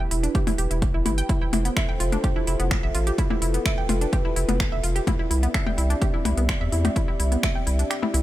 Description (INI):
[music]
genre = melodic techno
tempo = 127 BPM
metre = 4/4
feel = straight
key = unclear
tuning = A4 = 440 Hz
[part]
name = dark analog pad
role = sustained chords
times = 0.0-8.2 s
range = C4 to E5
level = -31 LUFS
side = left 1 dB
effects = chorus, sidechain pumping
[part]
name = analog pluck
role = arpeggios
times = 0.0-8.2 s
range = B3 to G5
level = -29 LUFS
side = right 2 dB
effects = chorus, sidechain pumping, tape echo
[part]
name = round analog bass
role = bass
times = 0.1-8.2 s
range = E1 to E2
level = -23 LUFS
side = equal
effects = sidechain pumping
[part]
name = techno drum kit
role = drums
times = 0.1-8.2 s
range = finger snaps, hi-hat, percussion blips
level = -28 LUFS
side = left 3 dB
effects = overdrive, small room ambience
[part]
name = electronic kick drum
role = drums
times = 0.3-7.5 s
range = none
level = -25 LUFS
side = equal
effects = overdrive, small room ambience
[sound]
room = digital ambience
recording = none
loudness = -21 LUFS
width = side -14 dB against mid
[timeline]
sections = 0.0-8.2 A section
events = kick drops out 7.9-8.2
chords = 0.0 Em; 1.3 F; 5.1 Cadd9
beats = 0.35 0.82 | 1.29 1.76 2.24 2.71 | 3.18 3.65 4.13 4.60 | 5.07 5.54 6.02 6.49 | 6.96 7.43 7.91